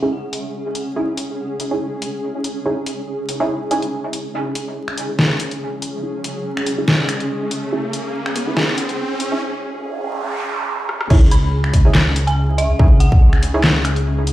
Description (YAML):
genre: deep dubstep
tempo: 142 BPM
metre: 4/4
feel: swing 54% on 16ths, half-time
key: C# minor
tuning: A4 = 440 Hz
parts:
  - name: granular cloud pad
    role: sustained chords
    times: 0.0-14.3 s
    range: C#4 to G#4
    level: -26 LUFS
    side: equal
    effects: built-in reverb
  - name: filtered dub chord stab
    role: stabs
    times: 0.0-13.6 s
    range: C#4 to G#4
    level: -24 LUFS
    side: right 2 dB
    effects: chorus, dub echo
  - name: dubstep drum kit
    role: drums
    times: 0.3-14.3 s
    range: crash cymbal, finger snaps, handclaps, hi-hat, rim click, snare drum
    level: -20 LUFS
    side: equal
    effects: low-pass filter on snare, low-pass filter on hats, low-pass filter on cymbals, low-pass filter on room
  - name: riser and noise sweep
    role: sound effects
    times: 5.8-11.1 s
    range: none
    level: -27 LUFS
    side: right 2 dB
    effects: none
  - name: dark detuned saw bass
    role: bass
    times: 11.1-14.3 s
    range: C#2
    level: -16 LUFS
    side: equal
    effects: none
  - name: electronic kick drum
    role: drums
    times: 11.1-13.2 s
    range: none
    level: -12 LUFS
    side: equal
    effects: none
  - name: dark detuned synth bell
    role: melody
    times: 11.3-13.3 s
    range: E5 to B5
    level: -28 LUFS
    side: right 1 dB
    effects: chorus, tremolo, dub echo
room: light reverb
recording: played on a big sound system in a bare room, large studio reverb, vinyl crackle, high-pass filter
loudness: -16 LUFS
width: side -15 dB against mid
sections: 0.0-4.3 A section; 4.3-11.1 B section; 11.1-14.3 C section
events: build-up 4.3-11.1; filter sweep on synth stab 4.3-11.1; riser 5.8-9.4; break 9.4-11.1; noise sweep 9.4-11.1; drum fill 10.9; drop 11.1-14.3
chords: 0.0 C#madd9